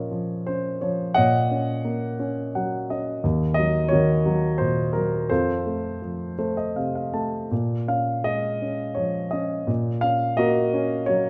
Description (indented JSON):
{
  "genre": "classical, lyrical solo piano",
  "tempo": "79-89 BPM",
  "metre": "3/4",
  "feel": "rubato",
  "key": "Bb minor",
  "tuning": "A4 = 441 Hz",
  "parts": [
    { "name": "dark concert grand piano", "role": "solo", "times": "0.0-11.3 s", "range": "Eb2 to A5", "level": "-24 LUFS", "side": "equal", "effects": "none" }
  ],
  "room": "moderate scoring stage reverb, RT60 1.6 s",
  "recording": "none",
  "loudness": "-24 LUFS",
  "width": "mono",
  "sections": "0.0-11.3 A section",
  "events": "grand piano fill 2.2-3.2, 6.0-7.5",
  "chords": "0.0 Bbm; 1.2 Gb6/Bb; 3.2 Ebm; 5.3 F; 7.5 Bbm7; 9.7 Gb/Bb"
}